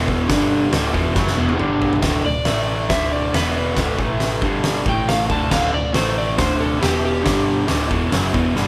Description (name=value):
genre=garage rock duo or trio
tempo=138 BPM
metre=4/4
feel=straight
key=D major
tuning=A4 = 440 Hz
part: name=raw garage guitar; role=riff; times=0.0-8.7 s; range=D2 to A3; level=-23 LUFS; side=equal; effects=overdrive
part: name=hollow-body short-scale picked electric bass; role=bass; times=0.0-8.7 s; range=D1 to A1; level=-28 LUFS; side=equal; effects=overdrive
part: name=oversized low-tuned drum kit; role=drums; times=0.1-8.7 s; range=crash cymbal, hi-hat, kick drum, snare drum, toms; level=-24 LUFS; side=equal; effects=none
part: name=electric slide guitar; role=melody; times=2.3-7.7 s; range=G4 to A5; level=-26 LUFS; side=equal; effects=none
room=light reverb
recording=band playing live in one room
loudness=-19 LUFS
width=mono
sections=0.0-2.0 A section; 2.0-8.7 B section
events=drum fill 1.2-2.0; electric slide guitar solo 2.0-8.7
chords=0.3 G5; 0.7 D; 1.6 G5; 2.0 D5; 2.5 A5; 2.9 D5; 3.3 E5; 3.8 D5; 4.0 A5; 4.4 G5; 4.9 A5; 5.3 D5; 6.0 A5; 6.4 D5; 6.8 E5; 7.3 G5; 7.7 D